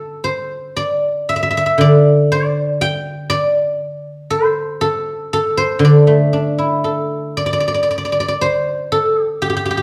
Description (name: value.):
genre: chinese traditional, Chinese solo plucked strings.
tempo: 59 BPM.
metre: 2/4.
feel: rubato.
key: D shang mode.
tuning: A4 = 440 Hz.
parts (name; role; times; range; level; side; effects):
guzheng; solo; 0.0-9.8 s; D3 to G5; -16 LUFS; equal; none.
room: wet large studio reverb, RT60 1.2 s.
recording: band playing live in one room.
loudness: -16 LUFS.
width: mono.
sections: 0.0-7.9 A section; 7.9-9.8 B section.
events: none.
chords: none.